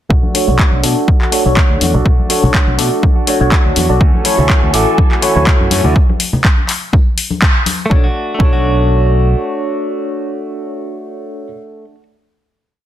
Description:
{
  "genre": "filtered disco house",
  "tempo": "123 BPM",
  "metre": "4/4",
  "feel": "swing 54% on 16ths",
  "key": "B dorian",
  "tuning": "A4 = 440 Hz",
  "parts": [
    { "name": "direct-recorded clean electric guitar", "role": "riff", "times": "0.1-12.0 s", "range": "E3 to F#4", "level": "-22 LUFS", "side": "equal", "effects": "spring reverb, sidechain pumping, low-pass filter" },
    { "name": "modern bright fingered electric bass", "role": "bass", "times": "0.1-9.3 s", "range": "A1 to B2", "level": "-15 LUFS", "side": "equal", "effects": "sidechain pumping, low-pass filter" },
    { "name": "electronic kick drum", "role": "drums", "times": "0.1-8.6 s", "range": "none", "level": "-12 LUFS", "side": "equal", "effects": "overdrive" },
    { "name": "tambourine and congas", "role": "percussion", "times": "0.1-7.9 s", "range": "none", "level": "-22 LUFS", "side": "left 3 dB", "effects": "sidechain pumping on perc, low-pass filter on perc" },
    { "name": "tine electric piano", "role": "accompaniment", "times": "0.3-11.5 s", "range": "D4 to D6", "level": "-17 LUFS", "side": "equal", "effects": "medium stereo tremolo, phaser, sidechain pumping, low-pass filter" },
    { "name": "punchy analog drum machine", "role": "drums", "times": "0.3-7.8 s", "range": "handclaps, hi-hat", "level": "-17 LUFS", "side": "left 2 dB", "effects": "overdrive, sidechain pumping on hats" },
    { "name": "clear symphonic string section", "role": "sustained chords", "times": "4.0-6.0 s", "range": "A4 to G#5", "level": "-22 LUFS", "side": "right 1 dB", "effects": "sidechain pumping, low-pass filter" }
  ],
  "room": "light reverb, digital ambience",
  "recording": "dense, heavily limited modern master",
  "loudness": "-10 LUFS",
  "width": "side -12 dB against mid",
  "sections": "0.1-7.9 groove; 7.9-11.8 final chord",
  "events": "filter sweep 0.1-7.9; band accent 7.4",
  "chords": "0.1 Bm7; 4.0 Dmaj9; 6.0 N.C.; 7.9 Bm7",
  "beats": "| 0.10 0.59 1.08 1.57 | 2.06 2.54 3.03 3.52 | 4.01 4.50 4.98 5.47 | 5.96 6.45 6.93 7.42 | 7.91 8.40 8.88 9.37 | 9.86 10.35 10.84 11.32"
}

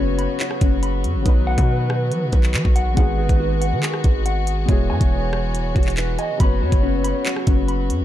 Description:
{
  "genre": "hip hop, drill",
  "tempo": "140 BPM",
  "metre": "4/4",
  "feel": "half-time",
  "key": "unclear",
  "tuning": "A4 = 439 Hz",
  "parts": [
    { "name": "hollow clarinet-like synth lead", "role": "second line", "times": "0.0-7.6 s", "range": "B4 to D#5", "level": "-30 LUFS", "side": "right 7 dB", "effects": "chorus, tape echo" },
    { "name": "dark grand piano", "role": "accompaniment", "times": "0.0-8.0 s", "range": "F#3 to B4", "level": "-28 LUFS", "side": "left 4 dB", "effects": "low-pass filter" },
    { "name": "warm chamber string section", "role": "sustained chords", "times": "0.0-8.0 s", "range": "C#3 to F#4", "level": "-29 LUFS", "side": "left 1 dB", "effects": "none" },
    { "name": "mellow electric guitar", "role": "arpeggios", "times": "0.0-8.0 s", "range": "C#4 to B5", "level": "-26 LUFS", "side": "left 5 dB", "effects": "low-pass filter, tape echo" },
    { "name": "distorted 808-style bass", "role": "bass", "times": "0.0-8.0 s", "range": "E1 to F#3", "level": "-22 LUFS", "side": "equal", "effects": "distortion" },
    { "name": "drill drum kit", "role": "drums", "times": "0.2-8.0 s", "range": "handclaps, hi-hat, kick drum, rim click", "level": "-19 LUFS", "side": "equal", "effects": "none" }
  ],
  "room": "little or no reverb",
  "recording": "dark, warm production",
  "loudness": "-17 LUFS",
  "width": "side -12 dB against mid",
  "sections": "0.0-8.0 A section",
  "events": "none",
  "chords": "0.0 F#sus4; 1.3 B; 3.0 G#m7; 4.7 Eadd9; 6.4 F#sus4",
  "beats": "0.40 0.83 | 1.26 1.69 2.11 2.54 | 2.97 3.40 3.83 4.26 | 4.69 5.11 5.54 5.97 | 6.40 6.83 7.26 7.69"
}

